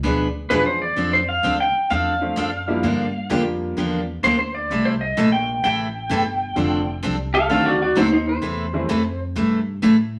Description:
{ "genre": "country, western swing", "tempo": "129 BPM", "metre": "4/4", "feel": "swing 67% on 8ths", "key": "F major", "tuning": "A4 = 443 Hz", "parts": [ { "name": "picked steel-string acoustic guitar", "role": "accompaniment", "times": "0.0-10.0 s", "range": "B2 to B4", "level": "-24 LUFS", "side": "equal", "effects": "none" }, { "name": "upright bass", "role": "bass", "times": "0.0-10.2 s", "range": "F1 to A2", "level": "-31 LUFS", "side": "equal", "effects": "none" }, { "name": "clean lap steel guitar", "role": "second line", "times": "0.5-9.2 s", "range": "Eb4 to G5", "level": "-23 LUFS", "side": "equal", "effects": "none" }, { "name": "clear upright piano", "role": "accompaniment", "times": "0.5-8.9 s", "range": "D3 to G#4", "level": "-27 LUFS", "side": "equal", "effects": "none" } ], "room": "wet studio reverb, RT60 0.8 s", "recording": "none", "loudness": "-21 LUFS", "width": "mono", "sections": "0.0-10.2 A section", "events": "electric slide guitar solo 0.0-10.2", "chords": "0.0 Bdim7; 1.0 F6; 2.8 Gm7; 4.7 C6; 6.6 F6; 7.5 D7b9; 8.4 C6" }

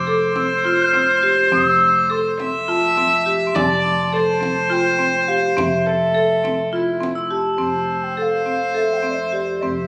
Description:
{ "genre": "contemporary instrumental, chamber music in an uneven meter", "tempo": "207 BPM (eighths)", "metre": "7/8", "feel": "straight", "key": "F major", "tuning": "A4 = 440 Hz", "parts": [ { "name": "mellow hollow wooden flute", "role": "melody", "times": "0.0-9.9 s", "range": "D5 to G6", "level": "-24 LUFS", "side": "equal", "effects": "none" }, { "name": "rich viola", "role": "second line", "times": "0.0-9.9 s", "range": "E4 to E5", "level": "-22 LUFS", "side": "equal", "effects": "none" }, { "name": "upright bass", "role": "bass", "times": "0.0-9.9 s", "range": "F1", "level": "-32 LUFS", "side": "equal", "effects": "none" }, { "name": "crotales", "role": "texture", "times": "0.0-7.9 s", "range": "C6 to E6", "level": "-35 LUFS", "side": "equal", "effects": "none" }, { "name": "marimba with medium hard mallets", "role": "arpeggios", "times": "0.1-9.9 s", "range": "C4 to A4", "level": "-24 LUFS", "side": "equal", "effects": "none" }, { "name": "frame drum", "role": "percussion", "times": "0.4-7.3 s", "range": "none", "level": "-33 LUFS", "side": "equal", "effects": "none" } ], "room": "wet recital hall reverb, RT60 1.6 s", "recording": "recorded on a phone in the room, studio ambience", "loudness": "-18 LUFS", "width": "mono", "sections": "0.0-7.6 A section; 7.6-9.9 B section", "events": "none", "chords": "0.0 Fmaj7" }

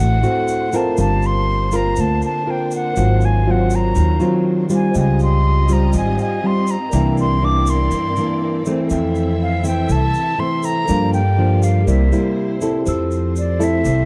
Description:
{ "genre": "bossa nova", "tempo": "121 BPM", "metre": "4/4", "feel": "straight", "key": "F major", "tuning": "A4 = 440 Hz", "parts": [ { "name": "reedy concert flute", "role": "melody", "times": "0.0-14.1 s", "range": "D5 to D6", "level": "-25 LUFS", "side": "equal", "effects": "none" }, { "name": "nylon-string guitar", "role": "accompaniment", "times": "0.0-14.1 s", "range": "F2 to Bb4", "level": "-22 LUFS", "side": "equal", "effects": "none" }, { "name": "tine electric piano", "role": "accompaniment", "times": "0.0-14.1 s", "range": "Gb4 to E6", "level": "-32 LUFS", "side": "equal", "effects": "none" }, { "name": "rich studio string section", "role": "sustained chords", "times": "0.0-14.1 s", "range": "Gb3 to E5", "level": "-32 LUFS", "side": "equal", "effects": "none" }, { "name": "upright bass", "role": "bass", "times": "0.0-14.1 s", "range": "G1 to G2", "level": "-20 LUFS", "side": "equal", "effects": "none" }, { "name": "tube shaker", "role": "percussion", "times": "0.2-14.1 s", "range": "none", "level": "-39 LUFS", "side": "equal", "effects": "none" } ], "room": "little or no reverb", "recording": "dark, warm production", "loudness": "-17 LUFS", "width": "mono", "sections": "0.0-12.9 A section; 12.9-14.1 A section", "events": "none", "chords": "0.0 D7; 1.0 Gm11; 3.0 Ab13; 4.9 Dbmaj9#11; 6.9 C9; 8.9 Fmaj7; 10.9 Gm7; 11.9 C7; 12.9 Fmaj7" }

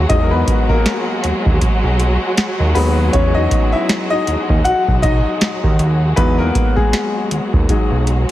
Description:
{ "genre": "contemporary R&B", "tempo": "79 BPM", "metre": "4/4", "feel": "swing 58% on 16ths", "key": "unclear", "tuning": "A4 = 440 Hz", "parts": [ { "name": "clear grand piano", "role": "accompaniment", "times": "0.0-8.3 s", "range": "F#3 to F#5", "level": "-18 LUFS", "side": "left 3 dB", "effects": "none" }, { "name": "warm studio string section", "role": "sustained chords", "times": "0.0-8.3 s", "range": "F#3 to F#4", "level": "-22 LUFS", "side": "right 1 dB", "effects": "none" }, { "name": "fat analog bass", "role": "bass", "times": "0.0-8.3 s", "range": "B1 to E2", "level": "-16 LUFS", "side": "right 1 dB", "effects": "none" }, { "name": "booming analog drum machine", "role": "drums", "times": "0.1-8.3 s", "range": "hi-hat, kick drum, snare drum", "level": "-16 LUFS", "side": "right 1 dB", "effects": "none" } ], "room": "small room ambience", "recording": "heavily compressed radio sound", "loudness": "-13 LUFS", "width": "side -14 dB against mid", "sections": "0.0-8.3 A section", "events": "grand piano solo 0.0-8.3", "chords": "0.0 Emaj9" }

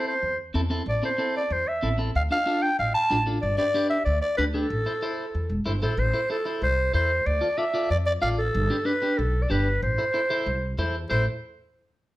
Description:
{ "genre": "latin", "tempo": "188 BPM", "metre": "4/4", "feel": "straight", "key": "A minor", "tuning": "A4 = 440 Hz", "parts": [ { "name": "growling clarinet", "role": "melody", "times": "0.0-11.2 s", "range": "A4 to A5", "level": "-25 LUFS", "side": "equal", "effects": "none" }, { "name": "clean electric guitar", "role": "accompaniment", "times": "0.0-11.3 s", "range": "C4 to D5", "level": "-30 LUFS", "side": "left 1 dB", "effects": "none" }, { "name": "upright bass", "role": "bass", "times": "0.2-11.3 s", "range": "E1 to F2", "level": "-26 LUFS", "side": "equal", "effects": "none" } ], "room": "light reverb", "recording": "none", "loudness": "-22 LUFS", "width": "side -16 dB against mid", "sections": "0.0-6.0 A section; 6.0-11.1 B section; 11.1-12.2 C section", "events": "none", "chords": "0.0 Am; 2.1 Dm; 3.4 G; 4.7 Am; 7.3 Dm; 8.5 G; 9.8 Am" }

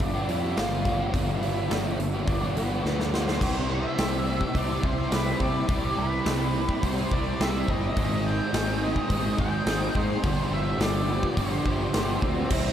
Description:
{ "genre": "rock, shoegaze and dream pop", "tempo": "106 BPM", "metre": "4/4", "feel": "straight", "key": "C major", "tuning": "A4 = 442 Hz", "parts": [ { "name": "octave-fuzz lead guitar", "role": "melody", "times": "0.0-12.7 s", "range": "B3 to G5", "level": "-31 LUFS", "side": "equal", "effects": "distortion, analog delay" }, { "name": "crunchy overdriven guitar", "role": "riff", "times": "0.0-12.7 s", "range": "G2 to Ab4", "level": "-28 LUFS", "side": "equal", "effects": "ensemble chorus" }, { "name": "fuzz picked electric bass", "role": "bass", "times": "0.0-12.7 s", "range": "G1 to C3", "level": "-30 LUFS", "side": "equal", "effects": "overdrive" }, { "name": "big rock drum kit", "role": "drums", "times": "0.0-12.6 s", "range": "crash cymbal, hi-hat, kick drum, snare drum", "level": "-29 LUFS", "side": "equal", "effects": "none" } ], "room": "wet huge ambient reverb, RT60 8.1 s", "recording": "dreamy mix soaked in reverb", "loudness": "-23 LUFS", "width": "side -10 dB against mid", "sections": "0.0-3.4 A section; 3.4-12.5 B section", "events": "drum fill 2.8-3.4", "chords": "0.0 G7; 3.4 Cmaj7; 8.0 Abmaj7; 10.2 G7sus4" }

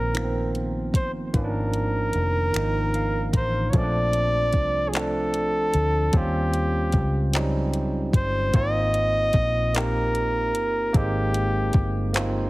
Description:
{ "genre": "slow six-eight R&B", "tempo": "50 BPM (dotted quarters)", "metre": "6/8", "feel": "straight", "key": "unclear", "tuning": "A4 = 440 Hz", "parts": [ { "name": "warm flugelhorn", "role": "melody", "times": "0.0-12.2 s", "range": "G4 to Eb5", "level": "-26 LUFS", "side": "equal", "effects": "none" }, { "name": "barky tine electric piano", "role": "accompaniment", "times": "0.0-12.5 s", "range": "Eb3 to Bb5", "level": "-28 LUFS", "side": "right 2 dB", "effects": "none" }, { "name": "vintage muted fingered electric bass", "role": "bass", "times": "0.0-12.5 s", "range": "F1 to Eb2", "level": "-26 LUFS", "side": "equal", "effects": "none" }, { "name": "smooth R&B drum kit", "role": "drums", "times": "0.1-12.3 s", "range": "finger snaps, handclaps, hi-hat, kick drum", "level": "-23 LUFS", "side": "equal", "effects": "none" } ], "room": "little or no reverb", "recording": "heavily compressed radio sound", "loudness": "-21 LUFS", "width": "side -20 dB against mid", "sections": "0.0-3.7 A section; 3.7-12.5 B section", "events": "tine electric piano fill 2.5-3.7", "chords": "0.0 Ab69; 3.7 Bbmaj9; 6.1 Eb13; 8.5 Ab69" }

